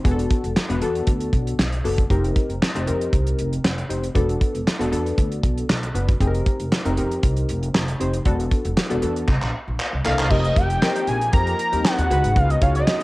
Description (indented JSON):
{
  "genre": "early-eighties boogie funk",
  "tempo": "117 BPM",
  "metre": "4/4",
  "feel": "straight",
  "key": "unclear",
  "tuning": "A4 = 440 Hz",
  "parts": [
    { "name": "funky polysynth comp", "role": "accompaniment", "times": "0.0-13.0 s", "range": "Bb3 to Db5", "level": "-25 LUFS", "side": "left 2 dB", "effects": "chorus, cassette tape" },
    { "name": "upright bass", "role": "bass", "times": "0.1-12.8 s", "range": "E1 to F2", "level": "-24 LUFS", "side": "equal", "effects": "none" },
    { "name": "damped 70s drum kit", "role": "drums", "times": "0.1-13.0 s", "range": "crash cymbal, handclaps, hi-hat, kick drum, snare drum", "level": "-21 LUFS", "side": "equal", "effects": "cassette tape" },
    { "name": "fat analog lead", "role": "melody", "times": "10.1-13.0 s", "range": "Eb5 to Bb5", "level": "-22 LUFS", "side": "equal", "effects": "cassette tape" },
    { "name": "warm analog pad", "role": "sustained chords", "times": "10.3-13.0 s", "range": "Eb3 to G4", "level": "-32 LUFS", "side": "left 1 dB", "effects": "chorus, tremolo, cassette tape" },
    { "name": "clear horn section", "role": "second line", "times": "11.7-12.3 s", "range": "G3 to Cb5", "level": "-32 LUFS", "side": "right 1 dB", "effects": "cassette tape" }
  ],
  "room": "light reverb, small room ambience",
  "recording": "home recording on cassette",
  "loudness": "-18 LUFS",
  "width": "side -20 dB against mid",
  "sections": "0.0-10.3 A section; 10.3-13.0 B section",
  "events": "drum fill 9.3-10.3",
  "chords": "0.1 E9sus4; 2.1 F9sus4; 4.2 E9sus4; 6.2 F9sus4; 8.3 E9sus4; 9.3 C13; 10.3 F9sus4; 12.1 Db9sus4"
}